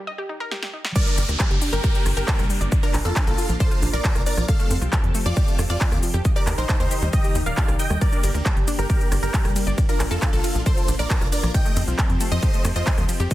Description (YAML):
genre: uplifting trance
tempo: 136 BPM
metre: 4/4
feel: straight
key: G minor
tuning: A4 = 440 Hz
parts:
  - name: wide unison pluck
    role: arpeggios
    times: 0.0-13.3 s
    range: F3 to Eb5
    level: -32 LUFS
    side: equal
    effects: sidechain pumping, tape echo
  - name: big-room dance drum kit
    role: drums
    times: 0.5-13.3 s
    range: crash cymbal, handclaps, hi-hat, ride cymbal, rim click, shaker, snare drum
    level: -29 LUFS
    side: equal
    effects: overdrive, studio reverb, sidechain pumping on hats, sidechain pumping on cymbals, sidechain pumping on perc
  - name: big supersaw lead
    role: melody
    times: 1.0-13.0 s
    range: D4 to G5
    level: -30 LUFS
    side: equal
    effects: phaser, sidechain pumping, tape echo
  - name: wide unison pluck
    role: second line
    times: 1.0-13.0 s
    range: A4 to G5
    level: -33 LUFS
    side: equal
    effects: sidechain pumping, tape echo
  - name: analog string pad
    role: sustained chords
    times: 1.0-13.3 s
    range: Eb3 to Bb4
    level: -33 LUFS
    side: left 1 dB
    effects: ensemble chorus, sidechain pumping
  - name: electronic kick drum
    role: drums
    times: 1.0-13.3 s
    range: none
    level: -21 LUFS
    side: equal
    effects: overdrive, studio reverb
  - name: downlifter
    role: sound effects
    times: 1.0-4.5 s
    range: none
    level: -32 LUFS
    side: equal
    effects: none
  - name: tight sequencer bass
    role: bass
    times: 1.2-13.3 s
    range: Eb1 to F2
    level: -24 LUFS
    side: equal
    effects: sidechain pumping
room: digital ambience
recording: dense, heavily limited modern master, high-pass filter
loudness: -19 LUFS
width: side -15 dB against mid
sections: 1.0-13.3 A section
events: break 0.0-1.0; drum fill 0.5-1.0; drop 1.0-13.3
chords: 0.0 Eb; 1.0 Gm; 2.7 Bb; 4.5 Fadd9; 6.2 Eb; 8.0 Gm; 9.8 Bb; 11.5 Fadd9